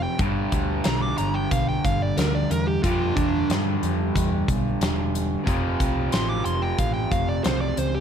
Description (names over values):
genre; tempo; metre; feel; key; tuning
blues rock power trio and southern rock; 91 BPM; 4/4; straight; G mixolydian; A4 = 440 Hz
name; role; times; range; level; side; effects
dark smooth lead guitar; melody; 0.0-8.0 s; D4 to D6; -28 LUFS; right 2 dB; overdrive
raw garage guitar; riff; 0.0-8.0 s; F2 to G3; -26 LUFS; equal; overdrive
hollow-body short-scale picked electric bass; bass; 0.0-8.0 s; E1 to G2; -26 LUFS; equal; none
big rock drum kit; drums; 0.2-7.9 s; hi-hat, kick drum, snare drum; -27 LUFS; equal; none
room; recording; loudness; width
light reverb; none; -21 LUFS; side -8 dB against mid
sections
0.0-8.0 A section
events
none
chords
0.2 G; 5.5 F